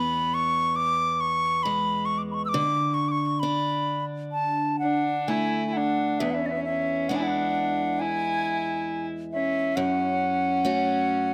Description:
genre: celtic folk, Celtic slow air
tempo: 67 BPM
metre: 4/4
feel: rubato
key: E mixolydian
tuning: A4 = 440 Hz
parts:
  - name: bright wooden flute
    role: melody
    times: 0.0-11.3 s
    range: D5 to E6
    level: -28 LUFS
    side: equal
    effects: none
  - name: picked acoustic archtop guitar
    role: accompaniment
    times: 0.0-11.3 s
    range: E2 to F#4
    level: -32 LUFS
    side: equal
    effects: none
  - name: warm fiddle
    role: second line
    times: 4.8-11.3 s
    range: B3 to E4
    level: -31 LUFS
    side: equal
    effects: none
room: light reverb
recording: close, detailed microphones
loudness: -26 LUFS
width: mono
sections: 0.0-6.2 A section; 6.2-11.3 B section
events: none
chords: 0.0 E; 2.5 D5; 6.2 E7; 9.8 F#m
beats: 0.79 1.66 | 2.54 3.43 4.35 5.29 | 6.20 7.09 7.99 8.88 | 9.77 10.64

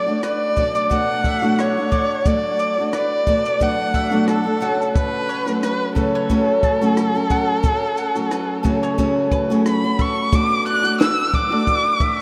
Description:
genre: acoustic pop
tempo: 89 BPM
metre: 4/4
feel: swing 55% on 16ths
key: B minor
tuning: A4 = 442 Hz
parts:
  - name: warm erhu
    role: melody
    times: 0.0-12.2 s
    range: A4 to F#6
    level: -23 LUFS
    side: equal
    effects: none
  - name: picked steel-string acoustic guitar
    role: accompaniment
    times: 0.0-12.2 s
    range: F#2 to F#4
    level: -23 LUFS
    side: equal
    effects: none
  - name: bowl-back mandolin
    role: arpeggios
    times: 0.0-12.2 s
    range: A4 to A5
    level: -31 LUFS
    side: equal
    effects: none
  - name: compact cocktail drum kit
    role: drums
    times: 0.2-12.2 s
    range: kick drum, rim click, shaker, snare drum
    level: -24 LUFS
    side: equal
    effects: none
room: wet cathedral reverb, RT60 5.0 s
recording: in a vast, echoing space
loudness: -19 LUFS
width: mono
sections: 0.0-10.3 A section; 10.3-12.2 B section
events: none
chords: 0.0 Bm7; 4.6 F#m; 10.3 Bm7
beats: 0.24 0.91 1.58 | 2.26 2.93 3.60 4.28 | 4.95 5.62 6.30 6.97 | 7.64 8.31 8.98 9.66 | 10.33 11.00 11.67

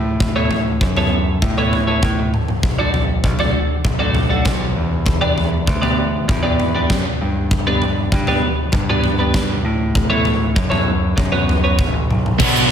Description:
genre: quiet-loud alternative rock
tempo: 98 BPM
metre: 4/4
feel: straight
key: unclear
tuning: A4 = 440 Hz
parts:
  - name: growling picked electric bass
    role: bass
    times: 0.0-12.7 s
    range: A1 to A2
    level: -20 LUFS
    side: equal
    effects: overdrive
  - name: huge arena drum kit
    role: drums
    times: 0.2-12.7 s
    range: crash cymbal, hi-hat, kick drum, snare drum, toms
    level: -18 LUFS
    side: equal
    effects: none
  - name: twelve-string electric guitar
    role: arpeggios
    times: 0.4-12.0 s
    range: A3 to D5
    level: -20 LUFS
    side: right 1 dB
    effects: analog chorus
  - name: sludgy distorted guitar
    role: riff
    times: 12.4-12.7 s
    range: B2 to D4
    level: -17 LUFS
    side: equal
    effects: overdrive
  - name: thick fuzz guitar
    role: riff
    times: 12.4-12.7 s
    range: B2 to B3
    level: -17 LUFS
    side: left 1 dB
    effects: distortion, slapback echo
room: moderate lush hall reverb, RT60 1.5 s, studio ambience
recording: big arena sound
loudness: -15 LUFS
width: side -8 dB against mid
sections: 0.0-12.4 A section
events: none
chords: 0.0 Aadd9; 2.6 Bm7; 4.8 Em7; 7.2 G; 9.7 Aadd9; 11.2 F#sus4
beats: | 0.20 0.81 1.42 2.03 | 2.64 3.25 3.86 4.47 | 5.08 5.69 6.30 6.91 | 7.52 8.13 8.74 9.35 | 9.96 10.57 11.18 11.79 | 12.39

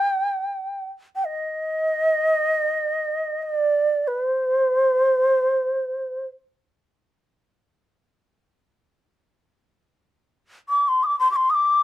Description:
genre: japanese traditional, Japanese chamber music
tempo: free time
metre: none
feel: none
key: C hirajoshi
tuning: A4 = 439 Hz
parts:
  - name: shakuhachi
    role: solo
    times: 0.0-11.8 s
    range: C5 to Eb6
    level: -19 LUFS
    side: equal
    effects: none
room: light reverb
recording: minimal, uncompressed stereo recording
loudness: -19 LUFS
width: side -14 dB against mid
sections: 0.0-9.4 A section; 9.4-11.8 A section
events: none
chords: none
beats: free time

